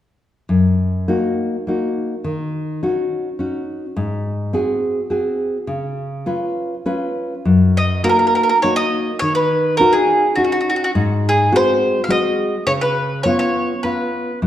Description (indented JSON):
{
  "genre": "italian folk, Italian serenade",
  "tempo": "103 BPM",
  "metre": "3/4",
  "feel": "swing 53% on 8ths, rubato",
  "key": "F# major",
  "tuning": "A4 = 437 Hz",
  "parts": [
    { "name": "nylon-string guitar", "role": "accompaniment", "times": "0.5-14.5 s", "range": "F#2 to B4", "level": "-18 LUFS", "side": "left 1 dB", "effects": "none" },
    { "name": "bowl-back mandolin", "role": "melody", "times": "7.8-14.4 s", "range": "F#4 to E#5", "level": "-17 LUFS", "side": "right 1 dB", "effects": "none" }
  ],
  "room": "wet recital hall reverb, RT60 1.4 s",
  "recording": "dark, warm production",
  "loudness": "-16 LUFS",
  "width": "side -11 dB against mid",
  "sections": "0.5-7.5 A section; 7.5-14.5 B section",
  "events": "none",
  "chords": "0.5 F#6; 2.3 D#m7; 4.0 G#7; 5.7 C#7; 7.5 F#6; 9.2 D#m7; 10.9 G#7; 12.7 C#7",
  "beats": "| 0.51 1.09 1.68 | 2.25 2.83 3.40 | 3.96 4.53 5.10 | 5.68 6.26 6.86 | 7.45 8.04 8.63 | 9.21 9.79 10.37 | 10.95 11.52 12.08 | 12.66 13.24 13.83 | 14.42"
}